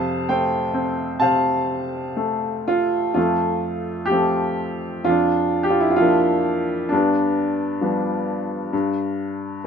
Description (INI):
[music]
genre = classical, lyrical solo piano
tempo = 60-67 BPM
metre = 4/4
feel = rubato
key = F major from 3.2 s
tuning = A4 = 440 Hz
[part]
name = clear upright piano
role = solo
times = 0.0-9.7 s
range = F2 to A5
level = -19 LUFS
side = equal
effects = none
[sound]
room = light reverb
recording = dark, warm production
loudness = -19 LUFS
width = side -7 dB against mid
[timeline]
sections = 0.0-3.2 A section; 3.2-9.7 B section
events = none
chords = 0.0 F; 5.1 Bb/F; 6.9 G7; 8.7 N.C.